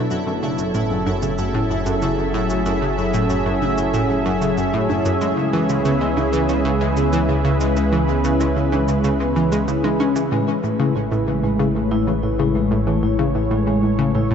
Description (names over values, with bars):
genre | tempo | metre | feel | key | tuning
ambient, sequencer-driven space music | 94 BPM | 4/4 | straight | A major | A4 = 439 Hz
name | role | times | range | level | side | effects
lush unison pad | sustained chords | 0.0-14.3 s | A2 to E5 | -22 LUFS | equal | chorus
vibraphone with medium mallets | arpeggios | 0.0-14.3 s | F#3 to E4 | -24 LUFS | moving between left 8 dB and right 1 dB | auto-pan, ping-pong delay
analog pluck | riff | 0.0-14.3 s | F#2 to C#4 | -22 LUFS | right 1 dB | chorus, ping-pong delay
round analog bass | bass | 0.0-14.3 s | F#1 to C#2 | -27 LUFS | equal | none
pulsing gated texture | texture | 0.0-10.3 s | E4 to E5 | -34 LUFS | right 2 dB | chorus, built-in reverb
cabasa and bongos | percussion | 0.1-10.3 s | none | -34 LUFS | right 3 dB | ping-pong delay
room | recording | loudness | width
wet huge ambient reverb, RT60 8.8 s | dark, warm production, nothing above 7.9 kHz | -17 LUFS | side -7 dB against mid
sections
0.0-10.3 A section; 10.3-14.3 B section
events
none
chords
0.1 F#m7; 5.2 C#m7; 10.3 Amaj7